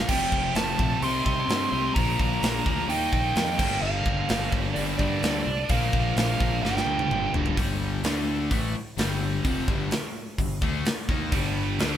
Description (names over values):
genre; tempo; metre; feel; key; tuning
hard rock; 128 BPM; 4/4; straight; G minor; A4 = 440 Hz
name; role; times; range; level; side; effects
bluesy overdriven lead guitar; melody; 0.0-7.3 s; D5 to C6; -28 LUFS; right 2 dB; distortion
biting overdriven guitar; riff; 0.0-12.0 s; F2 to Eb4; -32 LUFS; right 1 dB; spring reverb
overdriven semi-hollow guitar; riff; 0.0-12.0 s; F2 to Eb4; -31 LUFS; left 6 dB; none
growling fingered electric bass; bass; 0.0-12.0 s; F1 to C3; -31 LUFS; equal; overdrive
scooped high-gain guitar; riff; 0.1-7.6, 11.3-12.0 s; F2 to Eb4; -32 LUFS; right 7 dB; distortion
tight metal drum kit; drums; 0.1-11.9 s; crash cymbal, hi-hat, kick drum, snare drum, splash cymbal, toms; -28 LUFS; equal; none
room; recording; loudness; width
moderate studio ambience, RT60 0.5 s; band playing live in one room; -23 LUFS; side -10 dB against mid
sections
0.0-7.6 A section; 7.6-12.0 B section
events
drum fill 6.6-7.6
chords
0.1 F; 1.0 Cm; 2.0 Bb; 2.9 Eb; 3.6 Gm; 5.7 Bb; 6.6 Gm; 7.6 G5; 8.0 D5; 8.5 Gm